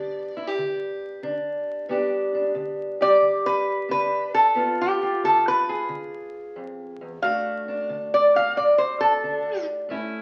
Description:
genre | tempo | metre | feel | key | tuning
acoustic country blues, solo or duo | 90 BPM | 4/4 | swing 68% on 8ths | unclear | A4 = 440 Hz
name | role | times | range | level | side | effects
lap resonator guitar | melody | 0.0-9.6 s | G4 to F5 | -22 LUFS | equal | none
fingerpicked steel-string acoustic guitar | accompaniment | 0.0-10.2 s | D2 to G#4 | -30 LUFS | equal | none
room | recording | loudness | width
wet large studio reverb, RT60 0.9 s | very old 78 rpm record, vinyl crackle | -23 LUFS | mono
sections
0.0-10.2 A section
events
resonator guitar played with a steel bar solo 0.0-10.2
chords
0.0 G; 4.6 G#dim7; 7.2 D

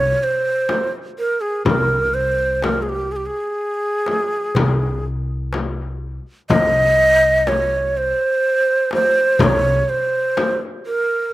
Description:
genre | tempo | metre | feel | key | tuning
Arabic maqam ensemble | 124 BPM (eighths) | 10/8 | straight | C maqam kurd | A4 = 440 Hz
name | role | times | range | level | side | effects
breathy ney | melody | 0.0-11.3 s | G4 to Eb5 | -17 LUFS | right 1 dB | slapback echo
upright bass | bass | 0.0-9.8 s | C2 | -24 LUFS | left 1 dB | none
darbuka | percussion | 0.7-10.6 s | none | -25 LUFS | equal | none
frame drum | percussion | 0.7-10.6 s | none | -22 LUFS | left 4 dB | none
room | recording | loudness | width
little or no reverb | recorded outdoors, with no room sound | -16 LUFS | side -16 dB against mid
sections
0.0-11.3 A section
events
none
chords
none

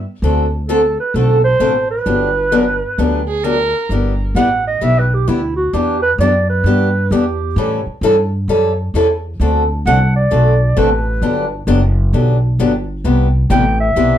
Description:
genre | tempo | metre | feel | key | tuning
acoustic string swing (jazz manouche) | 131 BPM | 4/4 | swing 64% on 8ths | G major | A4 = 439 Hz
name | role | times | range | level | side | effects
breathy clarinet | melody | 0.0-14.2 s | E4 to G5 | -16 LUFS | right 2 dB | none
upright bass | bass | 0.0-14.2 s | F#1 to A2 | -16 LUFS | equal | none
picked acoustic archtop guitar | accompaniment | 0.2-14.2 s | C3 to A4 | -16 LUFS | left 2 dB | none
warm violin | second line | 3.3-3.9 s | Ab4 to Bb4 | -18 LUFS | right 2 dB | tape echo
room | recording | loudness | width
moderate studio reverb, RT60 0.6 s | dark, warm production | -12 LUFS | side -10 dB against mid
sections
0.0-3.9 A section; 3.9-14.2 B section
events
clarinet solo 3.9-14.2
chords
0.2 D7; 2.1 Gmaj7; 3.9 G6; 5.7 Em7; 7.6 A7; 9.4 D7; 11.2 Gmaj7; 13.0 Cmaj7

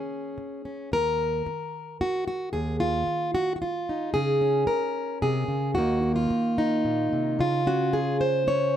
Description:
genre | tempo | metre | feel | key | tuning
folk, solo fingerstyle acoustic guitar | 111 BPM | 3/4 | straight | unclear | A4 = 440 Hz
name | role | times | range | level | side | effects
fingerpicked plugged-in steel-string acoustic guitar | solo | 0.0-8.8 s | Eb2 to Db5 | -24 LUFS | equal | none
room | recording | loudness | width
light reverb | none | -23 LUFS | side -10 dB against mid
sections
0.0-7.4 A section; 7.4-8.8 B section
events
none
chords
0.0 N.C.; 0.9 Eb5; 2.5 N.C.; 4.2 Db5; 5.8 Ebsus2; 7.4 Dbadd9

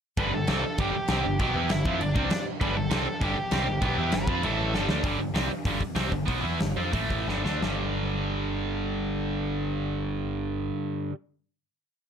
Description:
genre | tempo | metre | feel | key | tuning
punk rock | 166-198 BPM | 4/4 | straight | G mixolydian | A4 = 440 Hz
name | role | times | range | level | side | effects
cranked stack guitar | melody | 0.2-4.9 s | D4 to B5 | -32 LUFS | equal | overdrive
distorted electric guitar | riff | 0.2-11.1 s | G2 to F4 | -28 LUFS | right 1 dB | overdrive
growling picked electric bass | bass | 0.2-10.7 s | G1 to F2 | -32 LUFS | equal | overdrive
big rock drum kit | drums | 0.2-7.7 s | crash cymbal, hi-hat, kick drum, snare drum | -29 LUFS | equal | none
room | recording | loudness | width
light reverb | none | -25 LUFS | side -8 dB against mid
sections
0.2-5.0 riff; 5.0-7.6 outro; 7.6-10.5 final chord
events
drum fill 4.7-5.0, 7.3-7.6; slowing down 5.0-7.6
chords
0.2 G; 4.4 A5; 4.7 G5; 5.0 G; 6.9 A5; 7.3 G5

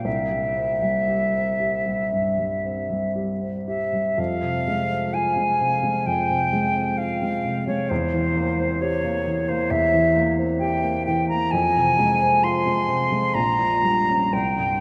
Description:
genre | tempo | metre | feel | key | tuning
classical, romantic duo for flute and grand piano | 57-69 BPM | 4/4 | rubato | F minor | A4 = 439 Hz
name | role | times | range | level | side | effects
silver concert flute | melody | 0.0-14.8 s | C5 to C6 | -24 LUFS | equal | none
warm baby grand piano | accompaniment | 0.0-14.8 s | Bb1 to G4 | -26 LUFS | equal | none
room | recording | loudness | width
wet cathedral reverb, RT60 5.5 s | in a vast, echoing space | -22 LUFS | mono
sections
0.0-4.2 A section; 4.2-14.8 B section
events
none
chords
0.1 C; 4.2 Fm; 7.9 C7/E; 11.5 Fm; 13.3 Gdim/Bb

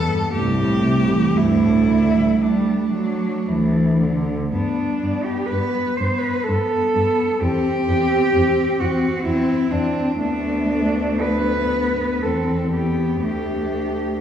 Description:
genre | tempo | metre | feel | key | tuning
classical, lyrical piece for cello ensemble | 56-68 BPM | 3/4 | rubato | G major | A4 = 440 Hz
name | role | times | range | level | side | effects
rich cello | melody | 0.0-14.2 s | G3 to A4 | -28 LUFS | left 4 dB | none
warm cello | second line | 0.0-14.2 s | A3 to C5 | -21 LUFS | right 3 dB | none
rich cello | accompaniment | 0.0-14.2 s | G2 to C4 | -23 LUFS | left 2 dB | none
warm cello | bass | 0.3-14.2 s | C2 to G2 | -24 LUFS | equal | none
room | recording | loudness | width
wet scoring stage reverb, RT60 1.8 s | heard from further back in the room, small room ambience | -17 LUFS | side -9 dB against mid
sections
0.0-4.5 A section; 4.5-14.2 B section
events
none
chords
0.3 Am7/C; 1.4 Dsus4; 3.5 D5; 4.5 G; 7.4 C/E; 10.2 D5; 12.2 C/E; 13.2 D5

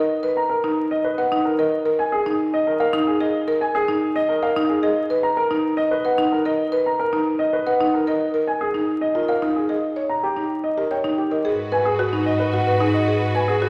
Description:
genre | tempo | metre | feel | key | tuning
classical, minimalist pattern music | 111 BPM | 3/4 | straight | B lydian | A4 = 441 Hz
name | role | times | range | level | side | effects
warm baby grand piano | melody | 0.0-13.7 s | G4 to A#5 | -24 LUFS | equal | none
buzzing marimba with medium mallets | arpeggios | 0.0-13.7 s | D#4 to C#5 | -24 LUFS | equal | none
bright studio string section | sustained chords | 11.4-13.7 s | F#4 to B4 | -29 LUFS | equal | none
rich studio double bass section | bass | 11.5-13.7 s | G#2 | -28 LUFS | equal | none
room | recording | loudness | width
wet scoring stage reverb, RT60 1.6 s | vinyl crackle | -21 LUFS | mono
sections
0.0-11.5 A section; 11.5-13.7 B section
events
none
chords
0.0 Bmaj7; 1.7 A#5; 5.0 Bmaj7; 8.2 A#5; 9.8 D#7; 11.5 G#m7

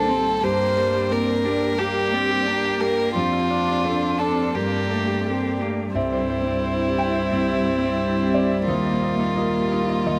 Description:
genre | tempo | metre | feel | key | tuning
neoclassical piano and strings | 88 BPM | 4/4 | rubato | G minor | A4 = 441 Hz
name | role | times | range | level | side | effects
warm violin | melody | 0.0-10.2 s | E4 to C5 | -26 LUFS | equal | analog delay
warm cello | second line | 0.0-10.2 s | G3 to D4 | -30 LUFS | equal | none
dark viola | accompaniment | 0.0-10.2 s | G3 to D4 | -32 LUFS | equal | none
felt-muted upright piano | accompaniment | 0.0-10.2 s | C2 to G5 | -28 LUFS | equal | none
ethereal airy pad | sustained chords | 0.0-10.2 s | G3 to F5 | -35 LUFS | equal | none
Celtic harp | arpeggios | 0.0-10.2 s | Bb3 to G5 | -31 LUFS | equal | none
room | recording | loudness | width
light reverb | close, detailed microphones | -22 LUFS | mono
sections
0.0-6.0 A section; 6.0-10.2 B section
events
none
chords
0.4 Gm; 3.2 Dm7/F; 4.5 Gmadd9; 6.0 C; 8.7 Ebadd9

